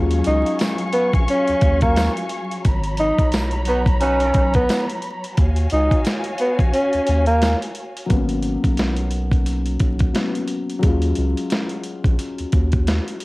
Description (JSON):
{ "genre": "hip hop, boom-bap hip-hop", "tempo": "88 BPM", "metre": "4/4", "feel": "swing 57% on 16ths", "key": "G# minor", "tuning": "A4 = 439 Hz", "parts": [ { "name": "dark upright piano", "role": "accompaniment", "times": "0.0-2.7, 8.1-13.2 s", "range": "F#3 to E#4", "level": "-25 LUFS", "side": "left 3 dB", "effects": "cassette tape, high-pass filter, low-pass filter" }, { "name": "warm studio string section", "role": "sustained chords", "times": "0.0-8.1 s", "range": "F#3 to C#6", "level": "-27 LUFS", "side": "left 1 dB", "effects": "high-pass filter, low-pass filter, cassette tape" }, { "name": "round analog bass", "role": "bass", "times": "0.0-13.0 s", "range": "G#1 to D#2", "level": "-21 LUFS", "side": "equal", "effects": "none" }, { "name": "dusty soul sampler-style drum kit", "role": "drums", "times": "0.1-13.2 s", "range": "hi-hat, kick drum, snare drum", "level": "-20 LUFS", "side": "equal", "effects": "cassette tape" }, { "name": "breathy tenor saxophone", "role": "melody", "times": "0.3-7.6 s", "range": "A#3 to D#4", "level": "-20 LUFS", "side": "equal", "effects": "high-pass filter, low-pass filter, cassette tape" }, { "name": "tambourine", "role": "percussion", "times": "0.6-7.6 s", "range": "none", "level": "-38 LUFS", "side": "right 7 dB", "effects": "none" }, { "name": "mellow horn section", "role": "stabs", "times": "3.7-4.5 s", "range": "D#4 to B4", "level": "-30 LUFS", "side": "right 5 dB", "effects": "high-pass filter, low-pass filter, cassette tape, analog delay" } ], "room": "little or no reverb", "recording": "home recording on cassette, vinyl crackle", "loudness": "-17 LUFS", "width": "side -22 dB against mid", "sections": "0.0-8.1 A section; 8.1-13.2 B section", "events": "kick muted 6.7-8.1", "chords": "0.0 D#m11; 2.6 G#m11; 5.4 D#m11; 8.1 G#m11; 10.8 D#m11", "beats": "0.60 1.29 1.97 | 2.65 3.33 4.01 4.70 | 5.38 6.06 6.74 7.42 | 8.11 8.79 9.47 10.15 | 10.83 11.51 12.20 12.88" }